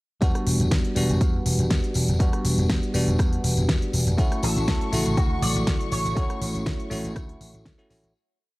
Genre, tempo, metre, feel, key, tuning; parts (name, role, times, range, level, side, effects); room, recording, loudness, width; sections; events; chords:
nu-disco, nu disco; 121 BPM; 4/4; straight; E dorian; A4 = 440 Hz
bell-like tine electric piano; accompaniment; 0.2-8.1 s; C#3 to F#4; -28 LUFS; equal; phaser, sidechain pumping
vintage slap bass; bass; 0.2-8.1 s; E1 to E2; -24 LUFS; equal; tube saturation
electronic kick drum; drums; 0.2-7.8 s; -24 LUFS; equal; overdrive
pop drum kit; drums; 0.2-8.1 s; hi-hat, rim click, snare drum; -29 LUFS; equal
tambourine; percussion; 0.2-8.1 s; -37 LUFS; left 3 dB
warm symphonic string section; sustained chords; 4.2-8.2 s; F#3 to C#6; -36 LUFS; left 2 dB; sidechain pumping
electric guitar with an envelope filter; melody; 4.4-7.6 s; F#4 to D5; -32 LUFS; equal; ensemble chorus, tape echo
little or no reverb; dry, gritty hardware recording; -21 LUFS; side -21 dB against mid
0.2-8.2 groove
fade-out 5.5-8.2
0.2 Em7; 4.2 Dmaj7